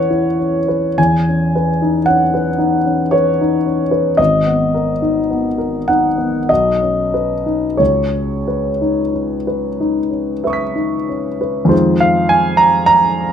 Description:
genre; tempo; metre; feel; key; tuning
classical, impressionist solo piano; 44-57 BPM; 3/4; rubato; C# dorian; A4 = 441 Hz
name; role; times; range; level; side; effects
clear concert grand piano; solo; 0.0-13.3 s; G#1 to B6; -13 LUFS; equal; none
room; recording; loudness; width
light reverb; close, detailed microphones; -13 LUFS; side -8 dB against mid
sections
0.0-11.7 A section; 11.7-13.3 B section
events
none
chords
0.0 E69; 1.0 C#m11/E; 4.2 G#madd9; 6.5 Badd9; 7.8 C#m9; 11.7 Fm7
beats
| 0.98 2.06 3.12 | 4.19 5.30 6.50 | 7.80 9.15 10.44 | 11.72 12.88

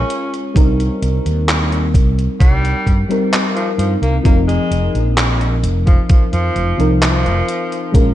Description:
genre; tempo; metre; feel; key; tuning
vaporwave; 65 BPM; 4/4; straight; unclear; A4 = 437 Hz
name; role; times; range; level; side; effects
clear tenor saxophone; melody; 0.0-7.9 s; F3 to Db4; -23 LUFS; equal; vintage 12-bit sampler grit, tape echo
mellow FM electric piano; accompaniment; 0.0-8.1 s; F3 to Bb4; -20 LUFS; left 1 dB; lush chorus, cassette tape, analog delay
mellow fretless electric bass; bass; 0.0-8.1 s; F1 to G2; -16 LUFS; equal; none
detuned 8-bit digital drum machine; drums; 0.1-8.1 s; handclaps, hi-hat; -21 LUFS; equal; gated reverb
electronic kick drum; drums; 0.6-8.1 s; none; -12 LUFS; equal; none
room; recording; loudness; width
light reverb, digital ambience; nothing above 10.8 kHz; -13 LUFS; side -13 dB against mid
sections
0.0-8.1 A section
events
none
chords
0.0 Bbm7; 0.6 Cm7; 4.2 F7sus4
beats
| 0.56 1.48 2.40 3.33 | 4.25 5.17 6.09 7.02 | 7.94

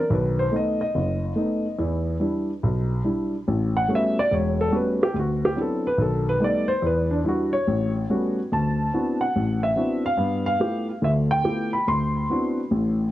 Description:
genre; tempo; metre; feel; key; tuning
solo jazz; 143 BPM; 4/4; swing 65% on 8ths; D mixolydian; A4 = 440 Hz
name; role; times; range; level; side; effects
dark baby grand piano; solo; 0.0-13.1 s; E1 to C6; -21 LUFS; equal; analog delay
room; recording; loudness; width
wet small room reverb, RT60 0.5 s; cassette tape; -21 LUFS; side -14 dB against mid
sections
0.0-8.5 A section; 8.5-13.1 B section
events
grand piano solo 0.0-8.5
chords
0.1 B7; 1.8 Em7; 3.5 A13; 5.1 D13; 6.0 Baug7; 6.8 Em7; 7.7 A13; 8.5 D13; 10.2 G13; 11.9 D13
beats
| 0.09 0.52 0.94 1.36 | 1.78 2.20 2.62 3.04 | 3.46 3.88 4.31 4.73 | 5.15 5.57 5.99 6.41 | 6.83 7.25 7.67 8.09 | 8.51 8.93 9.35 9.77 | 10.19 10.61 11.03 11.45 | 11.87 12.30 12.72

